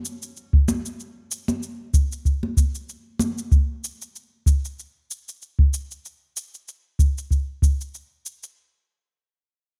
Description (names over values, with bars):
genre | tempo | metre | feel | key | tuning
sunset chillout | 95 BPM | 4/4 | swing 56% on 16ths | none | none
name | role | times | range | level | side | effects
shaker | drums | 0.1-8.5 s | none | -36 LUFS | equal | overdrive, studio reverb
electronic kick drum | drums | 0.5-7.8 s | none | -20 LUFS | equal | studio reverb
congas | percussion | 0.7-3.3 s | none | -29 LUFS | equal | none
room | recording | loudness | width
studio ambience | dark, warm production | -23 LUFS | mono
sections
0.0-8.6 A section; 8.6-9.8 B section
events
none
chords
none